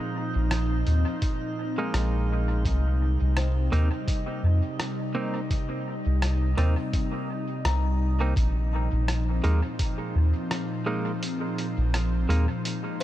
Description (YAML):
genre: ambient dub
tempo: 84 BPM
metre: 4/4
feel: swing 57% on 16ths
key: unclear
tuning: A4 = 440 Hz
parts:
  - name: airy breathy pad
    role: sustained chords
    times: 0.0-13.0 s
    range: Bb2 to Eb4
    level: -31 LUFS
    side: equal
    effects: chorus
  - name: drifting glass-harmonics texture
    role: texture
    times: 0.0-13.0 s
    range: Eb4 to Eb5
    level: -39 LUFS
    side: right 1 dB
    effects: chorus, built-in reverb
  - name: soft dub sub bass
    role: bass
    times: 0.4-12.5 s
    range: Bb1 to F2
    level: -23 LUFS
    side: equal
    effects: none
  - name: lo-fi sampler-style drum kit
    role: drums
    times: 0.5-13.0 s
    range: hi-hat, rim click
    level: -36 LUFS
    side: equal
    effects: studio reverb, dub echo
  - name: electronic kick drum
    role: drums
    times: 1.2-10.0 s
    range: none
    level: -27 LUFS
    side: equal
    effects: studio reverb
  - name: semi-hollow electric guitar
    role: stabs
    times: 1.8-12.5 s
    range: Ab3 to Eb4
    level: -34 LUFS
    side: right 3 dB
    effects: dub echo
  - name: kalimba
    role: arpeggios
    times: 3.4-13.0 s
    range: C4 to Bb5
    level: -40 LUFS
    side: left 4 dB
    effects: dub echo
room: digital ambience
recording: none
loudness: -24 LUFS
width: side -14 dB against mid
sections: 0.0-13.0 A section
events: kick drops out 11.2-13.0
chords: 0.0 Bb7sus4; 2.6 Cm7; 8.4 Bb7sus4